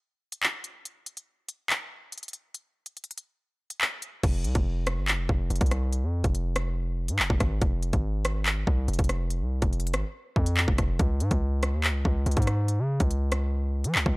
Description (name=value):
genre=hip hop, drill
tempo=142 BPM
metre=4/4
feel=half-time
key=F minor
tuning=A4 = 437 Hz
part: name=drill drum kit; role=drums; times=0.3-14.2 s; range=crash cymbal, handclaps, hi-hat, kick drum, rim click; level=-26 LUFS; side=equal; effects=none
part: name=hard-hitting 808-style bass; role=bass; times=4.2-14.2 s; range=F1 to F3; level=-26 LUFS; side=equal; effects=none
room=digital ambience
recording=dry, gritty hardware recording, transformer saturation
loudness=-24 LUFS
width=side -26 dB against mid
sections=0.0-4.2 A section; 4.2-14.2 B section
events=kick muted 2.5-4.2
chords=none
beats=0.01 0.43 | 0.85 1.28 1.70 2.12 | 2.54 2.97 3.39 3.81 | 4.24 4.66 5.08 5.50 | 5.92 6.35 6.77 7.19 | 7.62 8.04 8.46 8.88 | 9.31 9.73 10.15 10.57 | 11.00 11.42 11.84 12.26 | 12.69 13.11 13.53 13.95